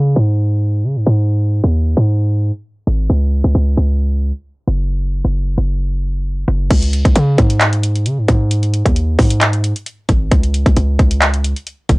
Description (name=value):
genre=hip hop, trap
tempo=133 BPM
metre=4/4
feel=half-time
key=unclear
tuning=A4 = 441 Hz
part: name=hard-hitting 808-style bass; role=bass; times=0.0-12.0 s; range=F#1 to C#3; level=-14 LUFS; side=equal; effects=none
part: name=trap drum kit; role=drums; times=6.7-12.0 s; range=crash cymbal, handclaps, hi-hat, kick drum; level=-14 LUFS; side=equal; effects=vintage 12-bit sampler grit
room=little or no reverb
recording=dry, gritty hardware recording, transformer saturation, low-pass filter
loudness=-13 LUFS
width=side -24 dB against mid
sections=0.0-6.7 A section; 6.7-12.0 B section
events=filter sweep 0.0-6.7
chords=none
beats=0.39 0.84 | 1.29 1.74 2.19 2.65 | 3.10 3.55 4.00 4.45 | 4.90 5.35 5.80 6.25 | 6.71 7.16 7.61 8.06 | 8.51 8.96 9.41 9.86 | 10.31 10.77 11.22 11.67